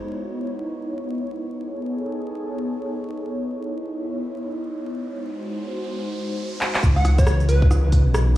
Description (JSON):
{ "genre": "future garage", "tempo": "137 BPM", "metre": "4/4", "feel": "swing 62% on 16ths", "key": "C# minor", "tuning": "A4 = 440 Hz", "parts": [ { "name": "airy breathy pad", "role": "sustained chords", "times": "0.0-8.4 s", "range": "E3 to C#5", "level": "-27 LUFS", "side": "equal", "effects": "chorus, sidechain pumping" }, { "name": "riser", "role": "sound effects", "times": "4.3-6.8 s", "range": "none", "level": "-41 LUFS", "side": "right 2 dB", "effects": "none" }, { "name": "organic electronic drum kit", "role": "drums", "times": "6.6-8.3 s", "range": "handclaps, hi-hat, rim click, shaker", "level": "-26 LUFS", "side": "equal", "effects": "none" }, { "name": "swelling detuned saw bass", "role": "bass", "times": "6.8-8.4 s", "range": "B1 to C#2", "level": "-18 LUFS", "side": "equal", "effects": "sidechain pumping" }, { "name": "electronic kick drum", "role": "drums", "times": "6.8-8.0 s", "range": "none", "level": "-17 LUFS", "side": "equal", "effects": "none" }, { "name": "plucky unison lead", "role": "melody", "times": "7.0-7.7 s", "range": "B4 to F#5", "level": "-28 LUFS", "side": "right 1 dB", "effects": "tape echo" } ], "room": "light reverb", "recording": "played on a big sound system in a bare room, large studio reverb, vinyl crackle", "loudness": "-21 LUFS", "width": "side -15 dB against mid", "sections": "0.0-6.8 A section; 6.8-8.4 B section", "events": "riser 4.3-6.8; drum fill 6.6", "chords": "0.0 C#m9; 1.6 B13; 3.3 C#m9; 5.1 G#7; 6.8 C#m9" }